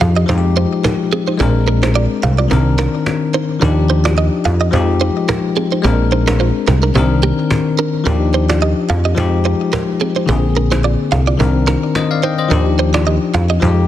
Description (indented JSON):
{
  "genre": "afrobeats",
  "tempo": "108 BPM",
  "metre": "4/4",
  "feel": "swing 55% on 16ths",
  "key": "Eb major",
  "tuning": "A4 = 440 Hz",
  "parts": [
    { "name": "bell-like tine electric piano", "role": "accompaniment", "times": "0.0-13.9 s", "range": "D3 to G5", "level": "-17 LUFS", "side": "left 6 dB", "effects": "none" },
    { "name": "direct-recorded clean electric guitar", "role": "riff", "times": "0.0-13.7 s", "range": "Bb3 to F5", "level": "-20 LUFS", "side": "right 6 dB", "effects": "ping-pong delay" },
    { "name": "plucky analog bass", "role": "bass", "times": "0.0-13.9 s", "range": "Bb1 to F2", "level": "-14 LUFS", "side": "equal", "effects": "none" },
    { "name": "cajon", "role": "drums", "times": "0.0-13.8 s", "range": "none", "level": "-23 LUFS", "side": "equal", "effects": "none" }
  ],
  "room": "light reverb",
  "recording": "dense, heavily limited modern master",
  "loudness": "-12 LUFS",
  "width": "side -12 dB against mid",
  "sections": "0.0-13.9 A section",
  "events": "none",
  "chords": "0.3 Fm9; 1.4 Bb9; 2.5 Cm9; 3.6 Ebmaj9; 4.7 Fm9; 5.8 Bb9; 7.0 Cm9; 8.1 Ebmaj9; 9.2 Fm9; 10.3 Bb9; 11.4 Cm9; 12.5 Ebmaj9"
}